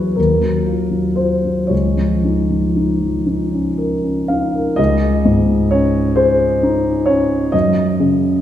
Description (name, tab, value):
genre	classical, impressionist solo piano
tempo	37-46 BPM (dotted quarters)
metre	6/8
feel	rubato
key	Db major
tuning	A4 = 439 Hz
part	warm concert grand piano	solo	0.0-8.4 s	Db2 to F5	-14 LUFS	left 1 dB	none
room	wet recital hall reverb, RT60 1.7 s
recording	heard from further back in the room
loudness	-14 LUFS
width	side -11 dB against mid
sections	0.0-4.8 A section; 4.8-8.4 A section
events	none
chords	0.2 Ebmadd9; 1.7 Db69; 4.8 Dbsus2; 7.5 Gb5